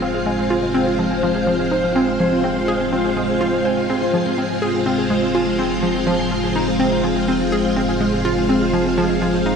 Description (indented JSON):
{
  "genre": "ambient, sequencer-driven space music",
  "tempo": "124 BPM",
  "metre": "4/4",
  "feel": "straight",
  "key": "F minor",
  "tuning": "A4 = 441 Hz",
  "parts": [
    { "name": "string machine, full ensemble", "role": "sustained chords", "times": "0.0-9.6 s", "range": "Ab3 to F5", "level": "-19 LUFS", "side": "equal", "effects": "ensemble chorus" },
    { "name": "concert harp", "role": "arpeggios", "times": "0.0-9.6 s", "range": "F4 to Ab5", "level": "-27 LUFS", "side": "equal", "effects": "auto-pan, analog delay" },
    { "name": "hollow square pluck", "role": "riff", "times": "0.0-9.6 s", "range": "F3 to C5", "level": "-21 LUFS", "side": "equal", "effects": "chorus, analog delay" },
    { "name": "round analog bass", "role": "bass", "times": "0.0-9.6 s", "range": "F1", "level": "-33 LUFS", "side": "equal", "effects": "none" }
  ],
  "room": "wet lush hall reverb, RT60 2.8 s",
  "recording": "dreamy mix soaked in reverb",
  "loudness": "-16 LUFS",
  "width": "side -6 dB against mid",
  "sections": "0.0-9.6 A section",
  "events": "fade-in on analog synth bass 0.0-9.6",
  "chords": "0.0 Fm",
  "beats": "| 0.26 0.75 1.23 1.72 | 2.20 2.68 3.17 3.65 | 4.13 4.62 5.10 5.59 | 6.07 6.55 7.04 7.52 | 8.01 8.49 8.97 9.46"
}